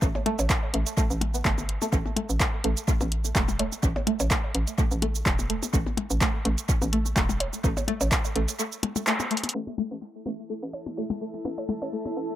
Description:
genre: minimal techno.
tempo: 126 BPM.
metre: 4/4.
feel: swing 54% on 16ths.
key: unclear.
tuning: A4 = 441 Hz.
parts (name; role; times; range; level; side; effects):
string-like resonator pluck; riff; 0.0-12.0 s; A3 to B3; -32 LUFS; right 1 dB; chorus, phaser, sidechain pumping, dub echo.
hollow knocking FM bass; bass; 0.0-12.3 s; E1 to A1; -28 LUFS; equal; sidechain pumping, high-pass filter.
electronic kick drum; drums; 0.0-8.2 s; none; -26 LUFS; equal; none.
punchy analog drum machine; drums; 0.0-9.6 s; handclaps, hi-hat, shaker; -29 LUFS; right 1 dB; tape echo.
percussion blips; percussion; 0.2-12.1 s; none; -33 LUFS; left 3 dB; overdrive, tape echo.
granular cloud pad; texture; 10.3-12.4 s; E4 to A5; -36 LUFS; equal; built-in reverb, sidechain pumping.
swarming drone; texture; 10.4-12.4 s; E4; -40 LUFS; left 3 dB; built-in reverb, sidechain pumping.
room: light reverb.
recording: echo-heavy mix, low-pass filter.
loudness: -24 LUFS.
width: side -13 dB against mid.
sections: 0.0-9.5 A section; 9.5-12.4 B section.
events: band accent 9.1; drum fill 9.3; filter sweep 9.5-12.4.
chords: 0.0 A5.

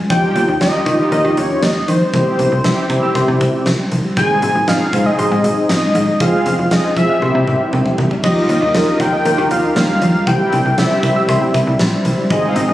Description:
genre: synth-pop.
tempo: 118 BPM.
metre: 4/4.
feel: straight.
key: unclear.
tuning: A4 = 438 Hz.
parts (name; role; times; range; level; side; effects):
soft round pluck; arpeggios; 0.0-12.7 s; Eb3 to F6; -21 LUFS; equal; chorus, digital delay.
wide unison lead; melody; 0.1-12.7 s; C5 to Ab5; -18 LUFS; left 1 dB; digital delay.
mellow synth brass; accompaniment; 0.1-12.7 s; C4 to Bb4; -19 LUFS; equal; chorus.
slap-like FM bass; bass; 0.1-12.7 s; F1 to Eb3; -18 LUFS; equal; none.
huge arena drum kit; drums; 0.1-12.7 s; crash cymbal, hi-hat, kick drum, snare drum, toms; -21 LUFS; equal; none.
brassy analog pad; sustained chords; 8.2-12.7 s; Eb3 to Bb4; -22 LUFS; equal; chorus, tremolo.
room: moderate lush hall reverb, RT60 1.8 s, small room reverb.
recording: recorded on a phone in the room, studio reverb, compression.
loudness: -12 LUFS.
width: side -14 dB against mid.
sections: 0.0-8.2 A section; 8.2-12.7 B section.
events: drum fill 7.2-8.2.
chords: 0.1 Ebadd9; 2.1 C; 4.2 Ab; 6.2 Fm; 7.2 C; 8.2 Ebadd9; 10.3 C.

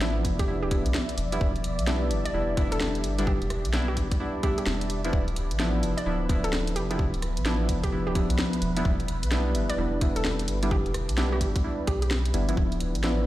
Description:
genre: UK garage, two-step garage.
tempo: 129 BPM.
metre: 4/4.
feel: swing 63% on 16ths.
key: unclear.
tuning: A4 = 440 Hz.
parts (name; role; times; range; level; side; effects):
soft string machine; sustained chords; 0.0-13.3 s; B4 to D5; -40 LUFS; equal; phaser, ensemble chorus, vintage 12-bit sampler grit, sidechain pumping.
deep mellow chord stab; stabs; 0.0-13.3 s; F3 to E4; -30 LUFS; equal; chorus, dub echo.
soft dub sub bass; bass; 0.0-13.3 s; D1 to B1; -28 LUFS; equal; none.
garage drum kit; drums; 0.0-13.2 s; hi-hat, rim click, snare drum; -33 LUFS; equal; overdrive.
ethereal airy pad; texture; 0.0-13.3 s; F3 to E5; -37 LUFS; equal; ensemble chorus, built-in reverb, tremolo, sidechain pumping.
electronic kick drum; drums; 0.2-12.7 s; none; -26 LUFS; equal; overdrive.
hollow square pluck; melody; 0.4-12.1 s; G4 to D5; -35 LUFS; right 1 dB; chorus, dub echo.
room: light reverb.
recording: played on a big sound system in a bare room, stone room reverb.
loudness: -24 LUFS.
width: side -15 dB against mid.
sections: 0.0-13.3 A section.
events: none.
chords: 0.0 Dm69; 1.2 Em7; 5.1 Dm69; 8.6 Em7; 12.6 Dm69.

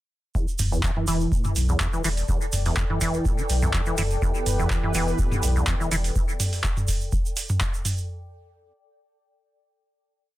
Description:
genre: acid house.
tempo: 124 BPM.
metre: 4/4.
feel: swing 53% on 16ths.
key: E minor.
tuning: A4 = 441 Hz.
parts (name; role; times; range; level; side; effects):
acid bass, saw; riff; 0.3-6.0 s; E2 to E3; -27 LUFS; equal; ensemble chorus, cassette tape, sidechain pumping, digital delay.
electronic kick drum; drums; 0.3-7.7 s; none; -26 LUFS; equal; none.
egg shaker; percussion; 0.4-8.1 s; none; -34 LUFS; right 6 dB; none.
granular cloud pad; texture; 1.9-6.2 s; A4 to G5; -35 LUFS; equal; built-in reverb, sidechain pumping.
warm sub bass; bass; 0.6-6.1 s; E1 to B1; -26 LUFS; equal; sidechain pumping.
booming analog drum machine; drums; 0.6-8.0 s; handclaps, hi-hat, toms; -27 LUFS; equal; none.
warm analog pad; sustained chords; 4.2-6.1 s; E3 to B4; -33 LUFS; left 1 dB; chorus, sidechain pumping.
room: little or no reverb.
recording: dense, heavily limited modern master.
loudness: -22 LUFS.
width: side -16 dB against mid.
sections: 0.3-8.1 groove.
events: fade-in on ambient pad 0.3-6.2.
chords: 0.3 Em.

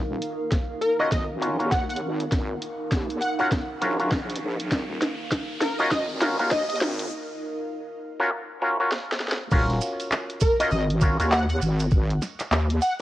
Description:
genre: glitch hop.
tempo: 100 BPM.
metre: 4/4.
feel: swing 60% on 16ths.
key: Eb minor.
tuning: A4 = 439 Hz.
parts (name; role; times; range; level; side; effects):
wobble bass; bass; 0.0-12.8 s; Eb1 to Eb2; -27 LUFS; equal; chorus, tube saturation, high-pass filter.
riser; sound effects; 2.5-7.1 s; none; -39 LUFS; equal; none.
granular cloud pad; texture; 0.0-7.1 s; Eb4 to F5; -34 LUFS; right 2 dB; built-in reverb, sidechain pumping, cassette tape.
drum and bass drum kit; drums; 0.2-12.8 s; crash cymbal, handclaps, hi-hat, snare drum; -27 LUFS; equal; studio reverb, cassette tape.
electronic kick drum; drums; 0.5-12.1 s; none; -24 LUFS; equal; studio reverb, cassette tape.
plucky unison lead; melody; 0.8-6.8, 10.4-12.9 s; Bb4 to Gb5; -27 LUFS; equal; ensemble chorus, cassette tape, tape echo.
auto-wah clav; stabs; 1.0-11.3 s; Db4 to Bb4; -27 LUFS; equal; overdrive, sidechain pumping, cassette tape, tape echo.
shekere; percussion; 9.5-13.0 s; none; -38 LUFS; right 8 dB; none.
room: light reverb, digital ambience.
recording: home recording on cassette, high-pass filter.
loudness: -22 LUFS.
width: side -14 dB against mid.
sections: 0.0-9.5 A section; 9.5-13.0 B section.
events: build-up 0.0-9.5; drum fill 0.0-7.1, 8.9-9.5; filter sweep 0.0-9.5; riser 2.5-7.1; break 7.1-9.5; drop 9.5-13.0.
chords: 0.0 Ebm9.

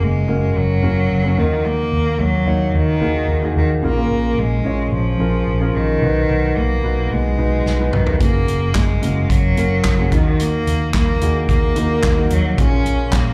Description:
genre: piano-driven pop.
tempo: 110 BPM.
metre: 4/4.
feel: straight.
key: unclear.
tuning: A4 = 438 Hz.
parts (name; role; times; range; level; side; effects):
rich cello; melody; 0.0-13.3 s; D#3 to C#4; -23 LUFS; equal; slapback echo, digital delay.
warm concert grand piano; accompaniment; 0.0-13.3 s; A#2 to C#5; -24 LUFS; equal; slapback echo.
vintage muted fingered electric bass; bass; 0.0-13.3 s; F#1 to D#2; -22 LUFS; equal; none.
natural country drum kit; drums; 7.7-13.3 s; handclaps, hi-hat, kick drum, snare drum, toms; -21 LUFS; equal; none.
room: small room ambience.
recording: live gig heard through the venue's PA, club reverb.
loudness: -17 LUFS.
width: mono.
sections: 0.0-13.3 A section.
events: drum fill 7.7-8.2.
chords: 0.0 F#add9; 1.4 D#m; 3.8 A#m7; 6.0 B; 8.2 F#add9; 10.1 D#m; 12.6 A#m7.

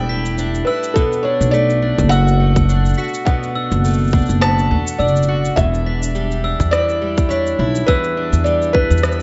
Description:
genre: folktronica.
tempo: 104 BPM.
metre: 4/4.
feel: swing 56% on 16ths.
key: E dorian.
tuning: A4 = 440 Hz.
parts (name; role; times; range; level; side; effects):
felt-muted upright piano; melody; 0.0-9.2 s; A4 to A5; -22 LUFS; equal; tape echo.
fingerpicked twelve-string acoustic guitar; arpeggios; 0.0-9.2 s; E2 to F#4; -25 LUFS; equal; vintage 12-bit sampler grit, tape echo.
upright bass; bass; 0.0-9.2 s; E1 to E2; -19 LUFS; equal; none.
glockenspiel with soft plastic mallets; second line; 0.1-9.0 s; E6 to B6; -30 LUFS; equal; delay.
electronic shaker and rim click; drums; 0.3-9.2 s; none; -30 LUFS; equal; none.
electronic kick drum; drums; 1.0-8.9 s; none; -20 LUFS; equal; none.
room: light reverb, studio ambience.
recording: nothing above 7.7 kHz.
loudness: -16 LUFS.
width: mono.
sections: 0.0-9.2 A section.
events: none.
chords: 0.0 Em7; 1.0 Bm7; 5.6 Em7.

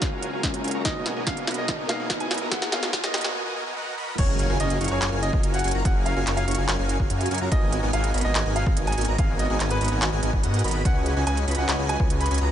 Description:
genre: future bass.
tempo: 144 BPM.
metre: 4/4.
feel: half-time.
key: F# major.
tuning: A4 = 439 Hz.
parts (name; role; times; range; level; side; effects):
bright baby grand piano; melody; 0.0-12.4 s; B4 to B5; -31 LUFS; right 1 dB; sidechain pumping, low-pass filter, dub echo.
felt-muted upright piano; accompaniment; 0.0-4.2 s; G#3 to G#4; -37 LUFS; left 3 dB; sidechain pumping, dub echo.
airy breathy pad; sustained chords; 0.0-3.3 s; B2 to A#4; -44 LUFS; left 1 dB; none.
Celtic harp; arpeggios; 0.0-0.1, 4.2-12.5 s; D#4 to B4; -36 LUFS; left 6 dB; sidechain pumping, dub echo.
dense compressed supersaw; riff; 0.0-12.5 s; B3 to C#6; -30 LUFS; right 1 dB; sidechain pumping, low-pass filter.
wide detuned saw bass; bass; 0.0-12.5 s; F#1 to G#2; -26 LUFS; equal; chorus, sidechain pumping, high-pass filter.
electronic kick drum; drums; 0.0-12.1 s; none; -24 LUFS; equal; none.
trap drum kit; drums; 0.0-12.5 s; crash cymbal, handclaps, hi-hat, snare drum; -29 LUFS; right 1 dB; high-pass filter on snare, high-pass filter on hats, high-pass filter on cymbals.
riser and impact; sound effects; 0.1-5.8 s; none; -35 LUFS; equal; none.
airy dreamy lead; arpeggios; 4.2-12.5 s; F#5 to C#6; -35 LUFS; equal; chorus, sidechain pumping, dub echo.
room: little or no reverb.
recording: high-pass filter, nothing above 10.3 kHz.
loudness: -22 LUFS.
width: side -10 dB against mid.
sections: 0.0-4.2 A section; 4.2-12.5 B section.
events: build-up 0.0-4.2; drum fill 0.0-3.4; filter sweep on supersaw synth 0.0-4.2; riser 0.1-3.4; break 3.4-4.2; drop 4.2-12.5; impact 4.2-5.9.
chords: 0.0 F#maj9; 0.9 G#m9; 4.2 F#maj9; 7.5 G#m9; 10.9 C#9sus4.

